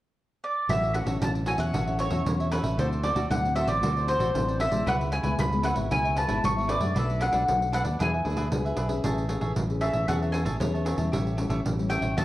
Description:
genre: samba and choro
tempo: 115 BPM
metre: 4/4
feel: straight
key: A major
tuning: A4 = 440 Hz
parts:
  - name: mandolin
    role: melody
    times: 0.4-12.2 s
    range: B4 to C#6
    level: -28 LUFS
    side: equal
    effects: none
  - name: cavaquinho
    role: accompaniment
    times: 0.7-12.2 s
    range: D4 to A5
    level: -34 LUFS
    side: right 1 dB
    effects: none
  - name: nylon-string guitar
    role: accompaniment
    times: 0.7-12.2 s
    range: G#2 to B4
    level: -33 LUFS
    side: left 3 dB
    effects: none
  - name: fingered electric bass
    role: bass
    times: 0.7-12.2 s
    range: G#1 to F#2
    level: -29 LUFS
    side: equal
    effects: none
  - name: pandeiro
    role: percussion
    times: 0.7-12.2 s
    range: none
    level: -31 LUFS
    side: right 1 dB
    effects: none
room: moderate large studio reverb, RT60 1.2 s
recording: worn, warbling old tape, cassette tape, warbly pitch drift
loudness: -24 LUFS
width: side -15 dB against mid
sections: 0.7-9.0 A section; 9.0-12.2 B section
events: none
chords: 0.0 N.C.; 0.7 A6; 2.8 D9; 4.9 C#m7; 7.0 Bm7; 8.0 E7; 9.0 Amaj9; 11.1 A7

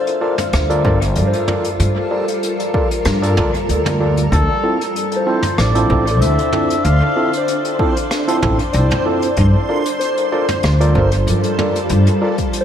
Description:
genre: ambient dub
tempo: 95 BPM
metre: 4/4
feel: swing 53% on 16ths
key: unclear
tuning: A4 = 440 Hz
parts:
  - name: granular cloud pad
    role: sustained chords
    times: 0.0-12.6 s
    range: G3 to F5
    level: -22 LUFS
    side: equal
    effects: built-in reverb, vintage 12-bit sampler grit
  - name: soft synth bell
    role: arpeggios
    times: 0.0-12.6 s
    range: A4 to D5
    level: -24 LUFS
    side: left 4 dB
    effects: chorus, phaser, tape echo
  - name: vintage brush drum kit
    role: drums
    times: 0.1-12.6 s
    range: hi-hat, rim click, toms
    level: -25 LUFS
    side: equal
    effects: dub echo
  - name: overdriven tine electric piano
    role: stabs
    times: 0.2-12.4 s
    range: C4 to D5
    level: -21 LUFS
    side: right 1 dB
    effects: dub echo
  - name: upright bass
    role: bass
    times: 0.5-12.0 s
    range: G1 to G2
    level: -16 LUFS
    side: equal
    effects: tube saturation
  - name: electronic kick drum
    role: drums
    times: 0.8-12.5 s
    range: none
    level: -21 LUFS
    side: equal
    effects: overdrive
  - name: trumpet with cup mute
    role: melody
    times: 4.3-7.5 s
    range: A4 to F5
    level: -22 LUFS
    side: left 1 dB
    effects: dub echo
  - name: backwards swelling texture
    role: texture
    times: 5.7-12.6 s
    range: C5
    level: -27 LUFS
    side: right 2 dB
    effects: built-in reverb
room: light reverb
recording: vinyl crackle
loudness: -14 LUFS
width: side -9 dB against mid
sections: 0.0-12.6 A section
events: none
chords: 0.0 Gm9; 4.3 Dm9; 9.4 Gm9

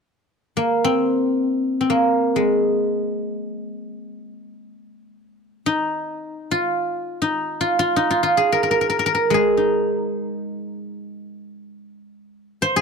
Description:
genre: chinese traditional, Chinese solo plucked strings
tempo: free time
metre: none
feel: none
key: unclear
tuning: A4 = 440 Hz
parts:
  - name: guzheng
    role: solo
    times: 0.6-12.8 s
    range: Ab3 to C5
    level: -19 LUFS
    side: equal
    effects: none
room: small room ambience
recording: dry, close 1970s-style studio recording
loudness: -18 LUFS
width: side -5 dB against mid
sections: 0.0-12.8 A section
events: none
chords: none

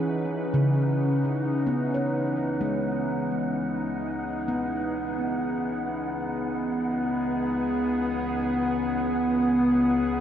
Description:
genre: ambient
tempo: free time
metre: none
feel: none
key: C# minor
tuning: A4 = 440 Hz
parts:
  - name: evolving wavetable pad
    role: sustained chords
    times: 0.0-10.2 s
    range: C#2 to B4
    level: -26 LUFS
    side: equal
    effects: chorus, built-in reverb
  - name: handpan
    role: arpeggios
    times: 0.0-7.0 s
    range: C#3 to C#5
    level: -28 LUFS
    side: equal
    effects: tape echo
  - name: wind-like tuned noise texture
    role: texture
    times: 0.0-10.2 s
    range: F#5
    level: -36 LUFS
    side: right 2 dB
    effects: built-in reverb
room: wet huge ambient reverb, RT60 8.4 s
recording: dark, warm production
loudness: -24 LUFS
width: side -9 dB against mid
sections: 0.0-10.2 A section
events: fade-in on ambient pad 0.0-10.2; fade-in on synth texture 0.0-10.2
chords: 0.0 C#m9

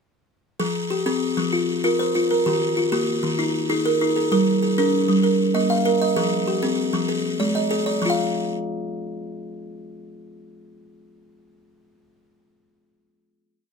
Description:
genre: southern african traditional, mbira-style interlocking cycle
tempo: 129 BPM (dotted quarters)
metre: 12/8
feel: straight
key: F equiheptatonic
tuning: A4 = 440 Hz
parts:
  - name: buzzing kalimba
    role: solo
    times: 0.6-12.5 s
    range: Eb3+29c to F5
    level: -20 LUFS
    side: equal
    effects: none
room: moderate small room reverb, RT60 0.5 s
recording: none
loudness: -19 LUFS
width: side -5 dB against mid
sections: 0.6-8.0 A section; 8.0-11.7 final note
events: none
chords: 0.6 Fm; 2.5 Eb; 4.3 Gm; 5.2 Bb5; 6.2 Fm; 7.1 Ab5; 8.0 N.C.

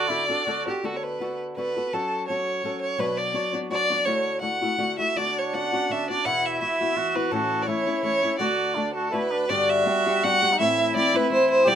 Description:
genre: mexican folk, mariachi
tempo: 167 BPM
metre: 3/4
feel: swing 54% on 8ths, rubato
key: D major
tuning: A4 = 440 Hz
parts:
  - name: rich violin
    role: melody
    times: 0.0-11.8 s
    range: F#4 to F#5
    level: -23 LUFS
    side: right 1 dB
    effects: none
  - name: mellow trumpet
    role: second line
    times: 0.0-0.8, 5.2-11.8 s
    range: D4 to G4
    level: -28 LUFS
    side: right 4 dB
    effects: none
  - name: flamenco guitar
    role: accompaniment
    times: 0.0-11.8 s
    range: E2 to C#5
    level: -28 LUFS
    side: left 4 dB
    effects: none
room: moderate small room reverb, RT60 0.5 s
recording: minimal, uncompressed stereo recording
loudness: -22 LUFS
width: side -9 dB against mid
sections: 0.8-9.5 A section; 9.5-11.8 B section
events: none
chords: 0.0 D; 0.8 D6; 1.9 F#m; 3.0 Bmadd9; 4.1 Dadd9; 5.2 Bmadd9/D; 6.3 Esus2; 7.3 A; 8.4 D; 9.5 G; 10.6 Am

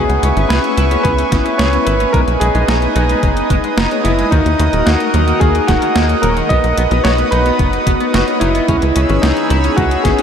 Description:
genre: synthwave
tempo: 110 BPM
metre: 4/4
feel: straight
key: unclear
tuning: A4 = 440 Hz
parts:
  - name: warm electric grand piano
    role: melody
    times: 0.0-10.2 s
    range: D#4 to D#5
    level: -17 LUFS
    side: equal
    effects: ping-pong delay
  - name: chorused pulse-width pad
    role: sustained chords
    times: 0.0-10.2 s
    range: G#4 to E6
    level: -20 LUFS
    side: right 2 dB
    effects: sidechain pumping
  - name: clean electric guitar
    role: riff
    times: 0.0-10.2 s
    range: D#3 to G#4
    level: -25 LUFS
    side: left 3 dB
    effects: analog chorus, ping-pong delay
  - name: mellow synth brass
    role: stabs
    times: 0.0-10.2 s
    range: E3 to C#5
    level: -21 LUFS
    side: left 3 dB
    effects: chorus, cassette tape, ping-pong delay
  - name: tight sequencer bass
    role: bass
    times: 0.0-10.1 s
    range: D#1 to D#2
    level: -16 LUFS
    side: equal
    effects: tube saturation, sidechain pumping
  - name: clean 12-bit digital drum machine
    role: drums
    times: 0.1-10.2 s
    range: hi-hat, snare drum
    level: -21 LUFS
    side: right 1 dB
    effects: overdrive, small room ambience
  - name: electronic kick drum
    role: drums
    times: 1.0-10.2 s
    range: none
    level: -17 LUFS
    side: equal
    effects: overdrive, small room ambience
room: wet huge ambient reverb, RT60 7.9 s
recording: dreamy mix soaked in reverb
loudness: -11 LUFS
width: side -8 dB against mid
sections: 0.0-10.2 A section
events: none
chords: 0.0 C#m7; 2.1 G#m/B; 4.3 D#m; 6.5 B; 8.7 C#m7

